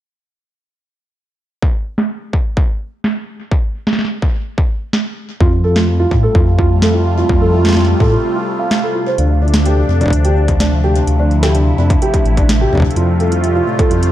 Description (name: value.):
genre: IDM.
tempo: 127 BPM.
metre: 4/4.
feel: straight.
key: D minor.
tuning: A4 = 440 Hz.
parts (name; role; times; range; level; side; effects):
electronic kick drum; drums; 1.6-13.9 s; none; -15 LUFS; equal; distortion.
booming analog drum machine; drums; 2.0-14.1 s; hi-hat, snare drum; -19 LUFS; right 1 dB; overdrive, low-pass filter on snare, low-pass filter on hats, low-pass filter on room, digital delay.
phased analog pad; sustained chords; 5.4-14.1 s; C3 to F4; -19 LUFS; equal; phaser, chorus, sidechain pumping.
felt-muted upright piano; arpeggios; 5.4-14.0 s; D4 to F5; -18 LUFS; right 1 dB; tape echo.
dark detuned saw bass; bass; 5.4-14.1 s; A1 to A2; -14 LUFS; equal; none.
room: light reverb.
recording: dark, warm production.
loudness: -12 LUFS.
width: side -13 dB against mid.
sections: 1.6-9.2 A section; 9.2-14.1 B section.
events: filter sweep on drum 1.6-9.2; break 8.2-9.2.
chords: 1.6 N.C.; 5.4 Fadd9; 9.2 Dm7; 13.0 Fadd9.